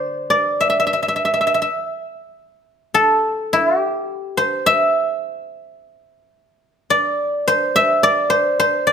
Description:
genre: chinese traditional, Chinese solo plucked strings.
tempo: 50-54 BPM.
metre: 4/4.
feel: rubato.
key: C gong mode.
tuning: A4 = 437 Hz.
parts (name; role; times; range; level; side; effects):
guzheng; solo; 0.0-8.9 s; D3 to E5; -16 LUFS; equal; none.
room: light reverb.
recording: close, detailed microphones.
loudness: -15 LUFS.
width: side -7 dB against mid.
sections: 0.0-8.9 A section.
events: none.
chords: none.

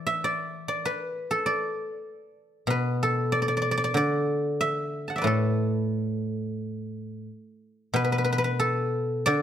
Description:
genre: chinese traditional, Chinese solo plucked strings.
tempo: 85-98 BPM.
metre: 4/4.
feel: rubato.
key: A zhi mode.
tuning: A4 = 439 Hz.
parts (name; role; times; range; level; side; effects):
guzheng; solo; 0.0-9.4 s; A2 to A5; -25 LUFS; equal; none.
room: light reverb.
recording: close, detailed microphones.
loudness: -24 LUFS.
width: side -10 dB against mid.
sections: 0.0-8.0 A section; 8.0-9.4 B section.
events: none.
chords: none.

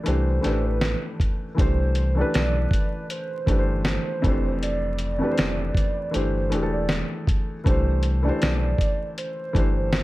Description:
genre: lo-fi hip hop.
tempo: 79 BPM.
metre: 4/4.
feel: swing 55% on 16ths.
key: C major.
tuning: A4 = 439 Hz.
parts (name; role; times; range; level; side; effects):
warbly nostalgic lead; melody; 0.0-10.0 s; B4 to D5; -30 LUFS; right 3 dB; chorus.
felt-muted upright piano; accompaniment; 0.0-10.0 s; F2 to C5; -27 LUFS; left 1 dB; cassette tape.
warm sub bass; bass; 0.1-10.0 s; E1 to C2; -24 LUFS; equal; none.
dusty soul sampler-style drum kit; drums; 0.1-10.0 s; hi-hat, kick drum, snare drum; -24 LUFS; equal; none.
room: light reverb.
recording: vinyl crackle.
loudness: -21 LUFS.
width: side -18 dB against mid.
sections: 0.0-1.6 A section; 1.6-10.0 A section.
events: none.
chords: 0.1 Cmaj7; 1.6 Cmaj9; 4.2 F69; 6.1 Gsus4; 7.7 Cmaj9.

